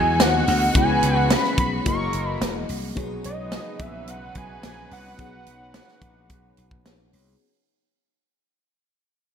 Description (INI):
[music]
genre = polished 1980s jazz-funk pop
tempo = 108 BPM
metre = 4/4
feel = straight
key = B major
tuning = A4 = 440 Hz
[part]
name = fat analog lead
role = melody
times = 0.0-7.1 s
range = D#5 to C#6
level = -25 LUFS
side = equal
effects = chorus, slapback echo
[part]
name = mellow horn section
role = second line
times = 0.0-7.1 s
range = A#3 to B4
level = -35 LUFS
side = right 2 dB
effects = slapback echo
[part]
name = FM electric piano with soft pad layer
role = accompaniment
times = 0.0-7.4 s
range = A#3 to D#5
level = -29 LUFS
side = left 6 dB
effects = lush chorus, slapback echo
[part]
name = clear studio string section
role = sustained chords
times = 0.0-7.4 s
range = C#3 to F#4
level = -32 LUFS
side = left 1 dB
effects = none
[part]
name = slap bass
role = bass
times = 0.0-7.3 s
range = E1 to E2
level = -27 LUFS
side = equal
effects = none
[part]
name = tight funk drum kit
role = drums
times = 0.2-7.3 s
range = hi-hat, kick drum, snare drum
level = -24 LUFS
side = right 1 dB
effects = none
[sound]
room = moderate lush hall reverb, RT60 1.8 s, studio ambience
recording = big arena sound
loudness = -19 LUFS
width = side -8 dB against mid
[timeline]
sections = 0.0-7.4 A section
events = fade-out 0.0-7.4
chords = 0.0 Emaj9; 0.8 C#m7; 1.9 F#13; 3.0 B69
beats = 0.20 | 0.75 1.31 1.86 2.42 | 2.97 3.52 4.08 4.63 | 5.19 5.74 6.30 6.85